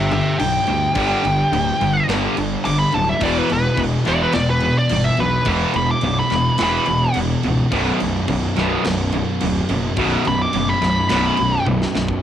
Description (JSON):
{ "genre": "heavy metal", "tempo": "106 BPM", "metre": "4/4", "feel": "straight", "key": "B minor", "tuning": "A4 = 441 Hz", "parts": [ { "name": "high-gain lead guitar", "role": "melody", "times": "0.0-11.6 s", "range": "G4 to D6", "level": "-20 LUFS", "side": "equal", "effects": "distortion, cassette tape" }, { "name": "distorted electric guitar", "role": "riff", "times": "0.0-12.2 s", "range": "B1 to G3", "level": "-23 LUFS", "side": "left 6 dB", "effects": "distortion, cassette tape" }, { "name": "distorted electric guitar", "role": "riff", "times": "0.0-12.2 s", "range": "B1 to G3", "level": "-23 LUFS", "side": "right 6 dB", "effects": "distortion, cassette tape" }, { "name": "fuzz guitar", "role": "riff", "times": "0.0-12.2 s", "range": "B1 to G3", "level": "-26 LUFS", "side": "equal", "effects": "distortion, cassette tape" }, { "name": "fuzz fingered electric bass", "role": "bass", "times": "0.0-12.1 s", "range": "B0 to D2", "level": "-23 LUFS", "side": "equal", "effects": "overdrive" }, { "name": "tight metal drum kit", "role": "drums", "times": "0.1-12.2 s", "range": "crash cymbal, kick drum, snare drum, toms", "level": "-28 LUFS", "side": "right 2 dB", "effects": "cassette tape" } ], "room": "little or no reverb", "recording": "home recording on cassette", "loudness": "-16 LUFS", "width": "side -10 dB against mid", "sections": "0.0-12.2 A section", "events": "half time 0.0-12.2; lead electric guitar solo 0.0-12.2; drum fill 11.7-12.2", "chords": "0.0 G5; 3.2 E5; 7.7 B5" }